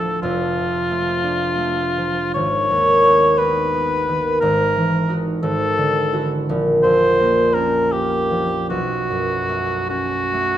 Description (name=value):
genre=classical, impressionist duo for cor anglais and harp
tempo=44-61 BPM (dotted quarters)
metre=6/8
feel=rubato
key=unclear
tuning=A4 = 440 Hz
part: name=warm cor anglais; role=melody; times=0.0-10.6 s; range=F4 to C#5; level=-19 LUFS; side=left 1 dB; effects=none
part: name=concert harp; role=accompaniment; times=0.0-10.6 s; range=F1 to F#4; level=-19 LUFS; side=right 1 dB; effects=none
room=wet recital hall reverb, RT60 1.5 s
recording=none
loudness=-16 LUFS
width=side -11 dB against mid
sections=0.0-10.6 A section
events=none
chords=0.2 F6; 2.4 G#m; 4.4 Emaj9#11/G#; 5.4 Dadd9/G#; 6.5 A#m6; 8.7 B7sus2